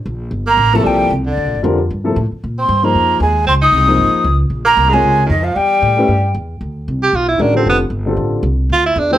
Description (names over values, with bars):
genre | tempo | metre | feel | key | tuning
jazz | 229 BPM | 4/4 | swing 59% on 8ths | unclear | A4 = 442 Hz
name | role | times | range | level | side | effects
upright bass | bass | 0.0-9.2 s | F1 to Bb2 | -17 LUFS | equal | none
breathy mellow jazz flute | melody | 0.5-6.3 s | D5 to Eb6 | -14 LUFS | equal | none
bright tenor saxophone | second line | 0.5-9.2 s | D3 to G4 | -17 LUFS | right 3 dB | none
dark grand piano | accompaniment | 0.7-9.2 s | C3 to Db5 | -17 LUFS | left 2 dB | none
room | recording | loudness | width
light reverb | none | -12 LUFS | side -12 dB against mid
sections
0.0-6.6 A section; 6.6-9.2 B section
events
tenor saxophone solo 6.6-9.2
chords
0.0 Gm11; 2.4 Bbm11; 5.6 A7(no3); 6.6 Dm7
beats
0.06 | 0.32 0.58 0.84 1.11 | 1.37 1.63 1.89 2.15 | 2.42 2.68 2.94 3.20 | 3.46 3.73 3.99 4.25 | 4.51 4.77 5.04 5.30 | 5.56 5.82 6.08 6.34 | 6.61 6.87 7.13 7.39 | 7.66 7.92 8.18 8.44 | 8.71 8.97